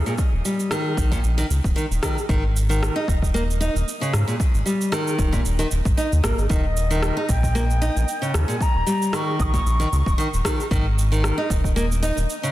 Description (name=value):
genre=organic downtempo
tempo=114 BPM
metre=4/4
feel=swing 54% on 16ths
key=unclear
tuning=A4 = 438 Hz
part: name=nylon-string guitar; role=arpeggios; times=0.0-12.5 s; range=Bb2 to Eb4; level=-25 LUFS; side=equal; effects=digital delay, shimmer reverb
part: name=round analog bass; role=bass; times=0.0-12.3 s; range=Eb1 to Ab2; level=-21 LUFS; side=equal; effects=sidechain pumping
part: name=electronic cabasa and rim click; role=drums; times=0.1-12.5 s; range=none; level=-29 LUFS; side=right 1 dB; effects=overdrive
part: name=electronic kick drum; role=drums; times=0.2-11.7 s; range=none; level=-22 LUFS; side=equal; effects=overdrive
part: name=reedy bansuri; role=melody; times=6.5-10.4 s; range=Eb5 to Eb6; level=-29 LUFS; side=left 2 dB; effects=digital delay, shimmer reverb
room=light reverb, digital ambience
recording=dense, heavily limited modern master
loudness=-19 LUFS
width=side -15 dB against mid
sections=0.0-12.5 A section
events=none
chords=0.0 Eb5; 2.3 Ab5; 6.5 Eb5; 10.7 Ebsus4